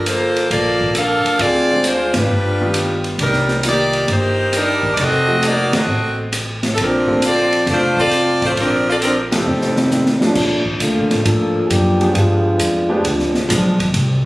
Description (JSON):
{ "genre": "jazz, big band swing", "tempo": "134 BPM", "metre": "4/4", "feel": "swing 68% on 8ths", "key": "Bb major", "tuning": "A4 = 441 Hz", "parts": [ { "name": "bright saxophone section", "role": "melody", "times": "0.0-10.2 s", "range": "F3 to F5", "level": "-16 LUFS", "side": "equal", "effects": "none" }, { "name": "upright bass", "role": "bass", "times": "0.0-14.3 s", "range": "F1 to A2", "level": "-21 LUFS", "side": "equal", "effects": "none" }, { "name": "open jazz drum kit", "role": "drums", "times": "0.1-14.1 s", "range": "crash cymbal, hi-hat, kick drum, ride cymbal, rim click, snare drum", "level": "-22 LUFS", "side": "equal", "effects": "none" }, { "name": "clear baby grand piano", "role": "accompaniment", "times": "1.7-13.8 s", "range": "D3 to D5", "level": "-22 LUFS", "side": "equal", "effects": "none" }, { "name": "dark trombone section", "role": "second line", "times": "9.8-13.4 s", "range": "Eb3 to A4", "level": "-17 LUFS", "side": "equal", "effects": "none" } ], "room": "moderate scoring stage reverb, RT60 1.9 s", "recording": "recorded on a phone in the room, studio reverb, compression", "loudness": "-14 LUFS", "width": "side -19 dB against mid", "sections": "0.0-10.4 A section; 10.4-14.3 B section", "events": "band accent 2.1, 5.7, 9.2; drum fill 9.5-10.4; trombone section solo 10.4-14.3", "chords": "0.0 Gm11; 1.4 Dm7b5; 2.3 G7b13; 3.2 Cm11; 5.0 F7b9; 6.8 F9; 10.4 Bbmaj7; 12.1 G7b9", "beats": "0.05 0.50 0.95 | 1.40 1.84 2.29 2.74 | 3.19 3.64 4.08 4.53 | 4.98 5.43 5.88 6.33 | 6.77 7.22 7.67 8.12 | 8.56 9.01 9.46 9.91 | 10.36 10.80 11.25 11.70 | 12.15 12.59 13.04 13.49 | 13.94" }